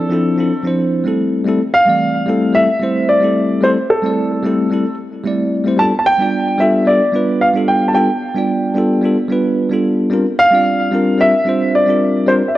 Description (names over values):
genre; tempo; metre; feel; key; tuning
chillout; 111 BPM; 4/4; straight; unclear; A4 = 440 Hz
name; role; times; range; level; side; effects
dark baby grand piano; melody; 0.0-12.6 s; A4 to A5; -15 LUFS; equal; digital delay
bell-like tine electric piano; accompaniment; 0.0-12.4 s; E3 to D5; -15 LUFS; equal; auto-pan
room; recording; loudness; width
wet concert hall reverb, RT60 1.9 s; worn, warbling old tape, cassette tape, warbly pitch drift; -12 LUFS; side -15 dB against mid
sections
0.0-12.6 A section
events
none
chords
0.0 Dm7; 1.2 Am7; 5.8 G7; 10.1 C9sus4